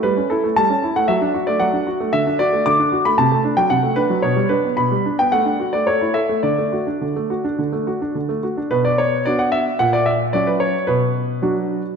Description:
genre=classical-period piano sonatina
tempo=103-116 BPM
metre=4/4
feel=rubato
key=D major, B minor from 8.7 s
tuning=A4 = 440 Hz
part: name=clear concert grand piano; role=solo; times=0.0-12.0 s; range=A#2 to D6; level=-16 LUFS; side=equal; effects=none
room=wet concert hall reverb, RT60 1.8 s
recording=dark, warm production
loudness=-16 LUFS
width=side -6 dB against mid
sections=0.0-8.7 A section; 8.7-12.0 B section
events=none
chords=0.0 A7/G; 1.1 D/F#; 2.1 D; 3.2 D7/C; 4.2 G/B; 5.3 D/A; 5.9 A; 6.4 D; 8.7 Bm; 9.8 F#/A#; 10.9 Bm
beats=| 0.04 0.57 1.08 1.60 | 2.13 2.66 3.18 3.71 | 4.24 4.78 5.32 5.86 | 6.43 7.01 7.58 8.15 | 8.72 9.26 9.80 10.33 | 10.88 11.42 11.96

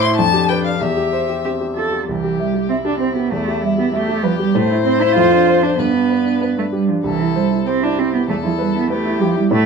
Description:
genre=quick classical-period movement for piano trio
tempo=97 BPM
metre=2/4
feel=straight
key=C major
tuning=A4 = 440 Hz
part: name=warm violin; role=melody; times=0.0-9.7 s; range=E4 to C6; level=-22 LUFS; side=left 10 dB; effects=none
part: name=dark cello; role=second line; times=0.0-9.7 s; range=E3 to A4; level=-18 LUFS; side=right 5 dB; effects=none
part: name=warm grand piano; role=accompaniment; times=0.0-9.7 s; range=C2 to E5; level=-19 LUFS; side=equal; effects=none
room=light reverb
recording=minimal, uncompressed stereo recording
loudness=-15 LUFS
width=side -5 dB against mid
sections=0.0-2.1 A section; 2.1-9.7 A section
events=none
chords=0.2 G7/F; 0.8 C/E; 2.1 C; 3.3 Em; 4.6 Am; 5.2 Dm7/F; 5.8 G; 7.1 C; 8.3 Em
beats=0.17 | 0.81 1.45 | 2.08 2.70 | 3.32 3.94 | 4.56 5.17 | 5.79 6.42 | 7.06 7.68 | 8.30 8.91 | 9.53

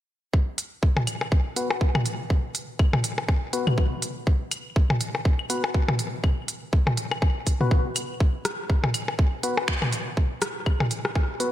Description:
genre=minimal techno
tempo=122 BPM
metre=4/4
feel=swing 57% on 16ths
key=unclear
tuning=A4 = 440 Hz
part: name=electronic kick drum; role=drums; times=0.3-11.3 s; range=none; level=-22 LUFS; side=equal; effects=none
part: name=minimal click drum kit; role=drums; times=0.6-11.5 s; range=finger snaps, hi-hat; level=-30 LUFS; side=right 2 dB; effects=gated reverb
part: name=minimal click drum kit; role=percussion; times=1.0-11.3 s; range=claves, percussion blips, rim click, toms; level=-27 LUFS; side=left 1 dB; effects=gated reverb, digital delay
part: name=percussive organ stab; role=stabs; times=1.6-11.5 s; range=B3 to B4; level=-31 LUFS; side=left 2 dB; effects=chorus, digital delay
room=light reverb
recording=bright 1980s-style digital production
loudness=-22 LUFS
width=side -13 dB against mid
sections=0.3-11.5 A section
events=filter sweep on synth stab 0.3-11.5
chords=0.3 B5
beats=| 0.34 0.83 1.32 1.81 | 2.30 2.79 3.29 3.78 | 4.27 4.76 5.25 5.75 | 6.24 6.73 7.22 7.71 | 8.20 8.70 9.19 9.68 | 10.17 10.66 11.15

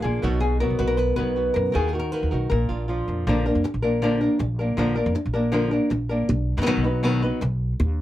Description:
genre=flamenco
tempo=159 BPM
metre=4/4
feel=straight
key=Bb phrygian dominant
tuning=A4 = 441 Hz
part: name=flamenco guitar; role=melody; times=0.0-7.8 s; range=Bb2 to B4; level=-22 LUFS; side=left 1 dB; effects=none
part: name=flamenco guitar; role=stabs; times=0.0-3.3 s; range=B2 to Bb4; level=-31 LUFS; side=right 5 dB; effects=none
part: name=upright bass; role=bass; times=0.0-8.0 s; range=Bb1 to F#2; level=-25 LUFS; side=equal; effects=none
room=little or no reverb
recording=dry, close 1970s-style studio recording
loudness=-20 LUFS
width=side -14 dB against mid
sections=0.0-3.3 A section; 3.3-8.0 B section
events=none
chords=0.2 B; 1.8 Ebm; 2.5 Bb; 6.3 B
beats=| 0.23 0.61 0.99 1.37 | 1.75 2.13 2.51 2.89 | 3.27 3.64 4.02 4.40 | 4.78 5.15 5.53 5.91 | 6.29 6.66 7.04 7.42 | 7.80

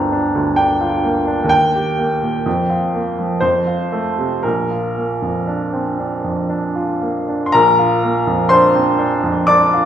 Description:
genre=classical, romantic nocturne for solo piano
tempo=56-67 BPM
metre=3/4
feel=rubato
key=Bb major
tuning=A4 = 440 Hz
part: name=clear upright piano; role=solo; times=0.0-9.9 s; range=G1 to D6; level=-14 LUFS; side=equal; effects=none
room=wet recital hall reverb, RT60 1.4 s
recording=recorded in a church or concert hall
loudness=-14 LUFS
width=side -9 dB against mid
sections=0.0-7.5 A section; 7.5-9.9 A section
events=none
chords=0.0 Gm7; 1.5 Eb; 2.5 Bb5/F; 3.4 F; 4.4 Bb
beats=0.58 | 1.51 2.46 3.42 | 4.43 5.47 6.49 | 7.54 8.51 9.48

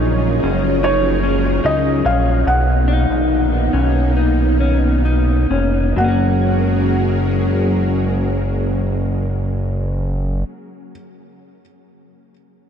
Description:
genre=dream pop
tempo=65-76 BPM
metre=4/4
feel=straight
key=F# major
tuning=A4 = 441 Hz
part: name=felt-muted upright piano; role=melody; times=0.0-10.9 s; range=C#5 to F#5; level=-23 LUFS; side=right 1 dB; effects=digital delay
part: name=string machine, cellos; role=sustained chords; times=0.0-10.4 s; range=F#3 to A#4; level=-21 LUFS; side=equal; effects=ensemble chorus
part: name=mellow electric guitar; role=arpeggios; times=0.0-11.0 s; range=F#3 to F#4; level=-22 LUFS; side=left 4 dB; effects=wide subtle chorus, digital delay
part: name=chorused synth bass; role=bass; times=0.0-10.4 s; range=E#1 to C#2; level=-18 LUFS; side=equal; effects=none
room=moderate huge ambient reverb, RT60 7.3 s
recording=dark, warm production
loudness=-14 LUFS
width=side -8 dB against mid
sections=0.0-6.0 A section; 6.0-9.7 B section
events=slowing down 0.0-6.0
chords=0.0 F#maj7; 2.5 Bmaj7; 6.0 F#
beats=0.03 0.83 1.64 | 2.46 3.30 4.16 5.05 | 5.96 6.89 7.82 8.75

